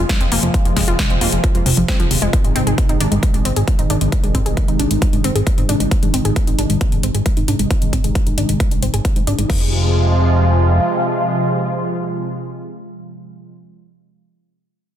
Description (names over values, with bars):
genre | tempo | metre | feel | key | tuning
uplifting trance | 134 BPM | 4/4 | straight | F minor | A4 = 437 Hz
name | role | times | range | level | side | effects
wide unison pluck | arpeggios | 0.0-9.7 s | C3 to Ab4 | -22 LUFS | left 1 dB | cassette tape, sidechain pumping, digital delay
fat analog bass | bass | 0.0-10.8 s | Eb1 to Ab2 | -18 LUFS | equal | sidechain pumping
lush unison pad | sustained chords | 0.1-13.5 s | C3 to F4 | -21 LUFS | right 1 dB | chorus, phaser, sidechain pumping
big-room dance drum kit | drums | 0.1-9.6 s | crash cymbal, hi-hat, snare drum, toms | -24 LUFS | left 2 dB | small room reverb
electronic kick drum | drums | 0.1-9.6 s | none | -17 LUFS | equal | small room reverb
room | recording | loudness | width
light reverb | dense, heavily limited modern master | -14 LUFS | side -10 dB against mid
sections
0.0-9.5 A section; 9.5-13.1 B section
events
filter sweep on synth pluck 0.0-9.5; filter sweep on analog synth pad 0.0-9.5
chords
0.0 Fm; 2.3 Ab; 9.5 Fm